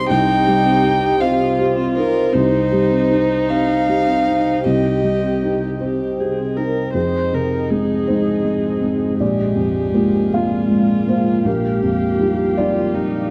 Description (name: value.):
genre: neoclassical piano and strings.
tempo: 53 BPM (dotted quarters).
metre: 6/8.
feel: rubato.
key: F dorian.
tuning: A4 = 438 Hz.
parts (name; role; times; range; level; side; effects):
dark violin; melody; 0.0-13.3 s; Eb4 to G5; -24 LUFS; equal; none.
felt-muted upright piano; accompaniment; 0.0-13.3 s; Bb1 to F5; -22 LUFS; equal; none.
warm viola; accompaniment; 0.0-13.3 s; Eb4 to C5; -24 LUFS; equal; none.
deep dark ambient pad; sustained chords; 0.0-13.3 s; Ab3 to G5; -26 LUFS; equal; chorus, built-in reverb.
vibraphone with soft mallets; arpeggios; 0.1-6.9 s; C4 to C5; -26 LUFS; equal; tape echo.
room: moderate large studio reverb, RT60 1.2 s.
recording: dark, warm production.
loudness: -18 LUFS.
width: mono.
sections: 0.0-6.9 A section; 6.9-13.3 B section.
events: none.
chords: 0.0 Cm; 6.9 Fm7; 9.2 Bb7; 11.5 Ebadd9/Bb.